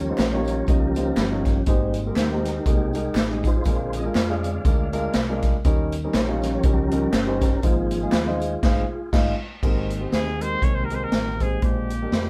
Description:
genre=uptempo gospel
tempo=121 BPM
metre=4/4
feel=swing 56% on 8ths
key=Ab major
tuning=A4 = 435 Hz
part: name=warm upright piano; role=accompaniment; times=0.0-12.3 s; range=Ab2 to Eb5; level=-30 LUFS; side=equal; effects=none
part: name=mellow tonewheel organ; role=sustained chords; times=0.0-12.3 s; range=D3 to F5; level=-30 LUFS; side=equal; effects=slow rotary speaker, chorus vibrato
part: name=deep dub fingered electric bass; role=bass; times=0.0-12.3 s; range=G1 to F2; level=-31 LUFS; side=equal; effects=none
part: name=swinging big-band drum kit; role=drums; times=0.2-12.3 s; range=crash cymbal, hi-hat, kick drum, snare drum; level=-25 LUFS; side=equal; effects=none
part: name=handclaps and tambourine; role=percussion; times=0.2-8.5 s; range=none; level=-43 LUFS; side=equal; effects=none
part: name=clear trumpet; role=melody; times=10.1-12.3 s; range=G4 to Db5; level=-31 LUFS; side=equal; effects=none
room=wet studio reverb, RT60 0.5 s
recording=band playing live in one room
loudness=-22 LUFS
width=mono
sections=0.0-9.6 A section; 9.6-12.3 B section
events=tonewheel organ solo 0.0-9.6; band accent 8.6-9.6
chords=0.0 Eb7; 1.7 Abmaj7; 3.7 Bb7; 5.6 Eb7; 7.6 Ab6; 9.6 Abmaj9; 11.6 Bb13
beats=0.19 0.69 1.18 | 1.68 2.17 2.67 3.17 | 3.66 4.16 4.65 5.15 | 5.65 6.14 6.64 7.14 | 7.63 8.13 8.63 9.13 | 9.63 10.13 10.62 11.12 | 11.62 12.12

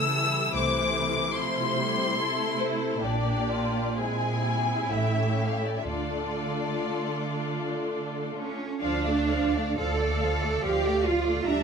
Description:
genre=classical, slow romantic movement for string orchestra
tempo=58-74 BPM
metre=3/4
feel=rubato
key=D minor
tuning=A4 = 440 Hz
part: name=warm symphonic violin section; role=melody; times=0.0-11.6 s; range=C5 to E6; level=-31 LUFS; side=left 4 dB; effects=none
part: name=warm symphonic violin section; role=second line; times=0.0-11.6 s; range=C4 to F5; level=-32 LUFS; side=left 5 dB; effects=none
part: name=rich studio viola section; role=accompaniment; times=0.0-11.6 s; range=E3 to F4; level=-32 LUFS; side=right 2 dB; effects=none
part: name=rich symphonic cello section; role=bass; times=0.0-11.6 s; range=A2 to A4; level=-29 LUFS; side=right 4 dB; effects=none
part: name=warm symphonic double bass section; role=bass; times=0.5-11.6 s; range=A1 to D2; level=-33 LUFS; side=right 2 dB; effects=none
room=moderate recital hall reverb, RT60 1.4 s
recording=minimal, uncompressed stereo recording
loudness=-25 LUFS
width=side -6 dB against mid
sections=0.0-8.8 A section; 8.8-11.6 A section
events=none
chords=0.0 A/C#; 0.5 Am/C; 3.0 Gm/Bb; 4.0 C7b13/Bb; 4.9 A7; 5.9 Dm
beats=| 0.54 1.35 2.17 | 3.02 3.98 4.89 | 5.87 6.87 7.84 | 8.82 9.78 10.63 | 11.45

